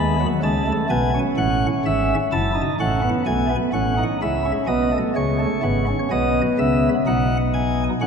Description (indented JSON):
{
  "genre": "classical, baroque-style 3-part fugue for pipe organ",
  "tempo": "63 BPM",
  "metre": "4/4",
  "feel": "straight",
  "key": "unclear",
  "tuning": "A4 = 439 Hz",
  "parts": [
    { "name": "chamber organ, sparkling flutes", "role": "solo", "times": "0.0-8.1 s", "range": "F#1 to B5", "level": "-18 LUFS", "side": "equal", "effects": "none" }
  ],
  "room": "wet church reverb, RT60 3.7 s",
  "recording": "none",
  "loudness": "-18 LUFS",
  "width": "side -6 dB against mid",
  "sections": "0.0-6.1 A section; 6.1-8.1 B section",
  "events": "none",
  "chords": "0.4 A; 2.3 F#m; 4.2 C#m; 6.1 G#m/B"
}